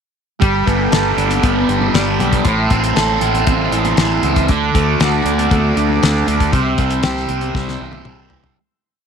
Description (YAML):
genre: psychedelic rock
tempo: 118 BPM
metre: 4/4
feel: straight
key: unclear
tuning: A4 = 439 Hz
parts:
  - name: combo organ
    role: sustained chords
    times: 0.4-8.5 s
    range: A4 to E6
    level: -23 LUFS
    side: right 10 dB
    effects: none
  - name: fuzz guitar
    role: riff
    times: 0.4-8.6 s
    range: A2 to A4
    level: -16 LUFS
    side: equal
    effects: distortion, phaser
  - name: fingered electric bass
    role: bass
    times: 0.4-8.5 s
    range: G1 to D2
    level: -21 LUFS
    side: equal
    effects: none
  - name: damped 70s drum kit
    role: drums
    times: 0.4-8.6 s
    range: hi-hat, kick drum, snare drum, toms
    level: -18 LUFS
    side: left 2 dB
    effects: none
  - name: congas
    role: percussion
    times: 1.2-8.4 s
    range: none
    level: -29 LUFS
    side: right 10 dB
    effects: none
room: little or no reverb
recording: 1960s-style stereo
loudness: -13 LUFS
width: side -7 dB against mid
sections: 0.4-8.6 pre-chorus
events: fade-out 6.5-8.6; drum fill 7.5-8.6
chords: 0.4 Gadd9; 2.5 Am; 4.5 D; 6.5 C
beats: | 0.42 0.93 1.44 1.95 | 2.46 2.96 3.47 3.98 | 4.49 5.00 5.51 6.02 | 6.53 7.04 7.54 8.05